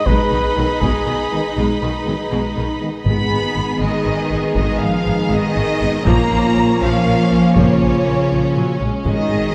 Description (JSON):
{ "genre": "cinematic, epic orchestral film score", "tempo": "80 BPM (dotted quarters)", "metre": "6/8", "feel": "straight", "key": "G# dorian from 3.1 s", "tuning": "A4 = 440 Hz", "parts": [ { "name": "warm symphonic violin section", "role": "melody", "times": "0.0-9.5 s", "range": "C#5 to B5", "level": "-27 LUFS", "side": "equal", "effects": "none" }, { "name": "warm symphonic violin section", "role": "second line", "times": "0.0-9.5 s", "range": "C#4 to C#5", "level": "-29 LUFS", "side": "equal", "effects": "none" }, { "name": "rich symphonic string section", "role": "sustained chords", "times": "0.0-3.1 s", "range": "D#4 to D#5", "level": "-29 LUFS", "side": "equal", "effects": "none" }, { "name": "mellow trumpet", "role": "stabs", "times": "0.0-2.8 s", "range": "D#4 to B4", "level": "-25 LUFS", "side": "equal", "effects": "none" }, { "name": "warm symphonic viola section", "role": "accompaniment", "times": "0.1-9.4 s", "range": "D#3 to B3", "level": "-26 LUFS", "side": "equal", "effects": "none" }, { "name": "rich symphonic cello section", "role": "bass", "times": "0.1-9.5 s", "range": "B2 to B3", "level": "-24 LUFS", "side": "equal", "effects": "none" }, { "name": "rich symphonic double bass section", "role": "bass", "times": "0.1-9.4 s", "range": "G#1 to B1", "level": "-25 LUFS", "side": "equal", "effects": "none" }, { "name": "taiko ensemble", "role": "drums", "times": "0.1-9.5 s", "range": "none", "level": "-25 LUFS", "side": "equal", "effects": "none" }, { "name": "mellow French horn section", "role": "sustained chords", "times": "0.6-9.5 s", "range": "B2 to G#4", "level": "-29 LUFS", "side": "equal", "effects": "none" }, { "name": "mellow trombone section", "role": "sustained chords", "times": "0.6-9.5 s", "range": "D#3 to A#3", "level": "-25 LUFS", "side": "equal", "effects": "none" }, { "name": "timpani", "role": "percussion", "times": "3.1-3.8 s", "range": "G#2", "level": "-27 LUFS", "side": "equal", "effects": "none" } ], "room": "wet scoring stage reverb, RT60 2.1 s", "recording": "none", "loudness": "-17 LUFS", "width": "mono", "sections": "0.0-3.1 A section; 3.1-9.5 B section", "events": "none", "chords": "0.1 B6; 3.1 G#m; 6.1 A#m" }